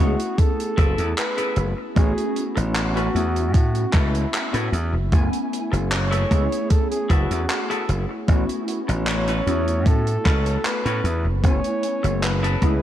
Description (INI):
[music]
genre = vaporwave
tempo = 76 BPM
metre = 4/4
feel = straight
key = F# minor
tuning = A4 = 440 Hz
[part]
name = mellow flugelhorn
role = melody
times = 0.0-12.8 s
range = E4 to C#5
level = -28 LUFS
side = equal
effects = tape echo
[part]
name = warbly lo-fi synth keys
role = accompaniment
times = 0.0-12.8 s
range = A3 to G#5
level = -27 LUFS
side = equal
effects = ensemble chorus, vintage 12-bit sampler grit
[part]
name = semi-hollow electric guitar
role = riff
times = 0.0-12.7 s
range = C#4 to B4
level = -31 LUFS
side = left 2 dB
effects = wide subtle chorus, tape echo
[part]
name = slap bass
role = bass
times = 0.0-12.8 s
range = F#1 to A2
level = -22 LUFS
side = equal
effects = none
[part]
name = tight metal drum kit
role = drums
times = 0.2-12.8 s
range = handclaps, hi-hat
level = -29 LUFS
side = equal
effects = gated reverb
[part]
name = electronic kick drum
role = drums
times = 0.4-12.8 s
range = none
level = -18 LUFS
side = equal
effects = overdrive
[sound]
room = small room ambience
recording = cassette tape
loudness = -19 LUFS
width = side -11 dB against mid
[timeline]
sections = 0.0-12.8 A section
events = none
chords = 0.0 F#m11; 2.0 A69; 5.1 F#m11; 8.3 A69; 11.4 F#m11